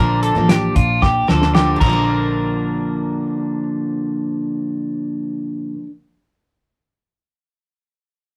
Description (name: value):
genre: jangly indie pop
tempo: 113 BPM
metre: 4/4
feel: straight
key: Bb major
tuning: A4 = 441 Hz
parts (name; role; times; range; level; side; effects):
- picked steel-string acoustic guitar; accompaniment; 0.0-5.9 s; Bb2 to D4; -23 LUFS; equal; none
- twelve-string electric guitar; arpeggios; 0.0-3.6 s; F4 to Bb4; -23 LUFS; equal; none
- vintage muted picked electric bass; bass; 0.0-5.7 s; A1 to D2; -24 LUFS; equal; none
- cloth-damped thuddy drum kit; drums; 0.2-1.9 s; crash cymbal, hi-hat, kick drum, snare drum; -19 LUFS; equal; none
room: moderate studio reverb, RT60 0.6 s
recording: rough rehearsal-room recording, warm saturation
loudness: -19 LUFS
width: mono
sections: 0.0-2.1 A section; 2.1-6.3 B section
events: drum fill 1.0-2.1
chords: 0.0 Bb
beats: 0.49 1.02 1.55 | 2.08 2.61 3.14 3.67 | 4.20 4.73 5.26 5.79